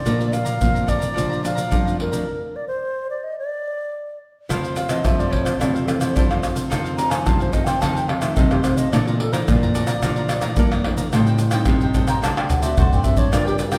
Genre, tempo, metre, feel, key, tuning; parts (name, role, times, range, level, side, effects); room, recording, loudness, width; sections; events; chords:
samba and choro; 109 BPM; 4/4; straight; Bb major, F major from 4.5 s; A4 = 443 Hz
baroque flute; melody; 0.0-13.6 s; F4 to Bb5; -28 LUFS; equal
cavaquinho; accompaniment; 0.0-13.8 s; Eb4 to Bb5; -34 LUFS; equal
nylon-string guitar; accompaniment; 0.0-13.8 s; F2 to Bb4; -28 LUFS; equal
nylon-string guitar; bass; 0.1-13.8 s; G2 to Bb3; -26 LUFS; equal
egg shaker, surdo, pandeiro and tamborim; percussion; 0.1-13.8 s; -23 LUFS; equal
wet recital hall reverb, RT60 1.5 s; recorded in a church or concert hall; -20 LUFS; mono
0.0-4.5 A section; 4.5-13.8 B section
stop 2.3-4.5; flute solo 4.5-13.8; drum fill 12.2-13.3
0.1 Bbmaj7; 4.5 Fmaj7; 6.7 F7; 8.9 Bbmaj7#11; 11.1 Am7b5; 12.2 D7